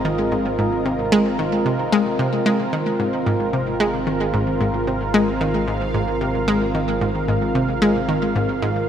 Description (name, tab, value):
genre	ambient, sequencer-driven space music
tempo	112 BPM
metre	4/4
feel	straight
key	unclear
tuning	A4 = 441 Hz
part	sweeping resonant pad	sustained chords	0.0-8.9 s	C4 to F5	-22 LUFS	right 1 dB	chorus
part	analog pluck	riff	0.0-8.7 s	Ab2 to Ab3	-20 LUFS	left 1 dB	chorus, tape echo
part	analog drone	bass	0.0-8.9 s	Ab1	-30 LUFS	equal	chorus, tube saturation
room	wet cathedral reverb, RT60 7.0 s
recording	in a vast, echoing space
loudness	-18 LUFS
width	side -9 dB against mid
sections	0.0-8.9 A section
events	none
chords	0.0 Ab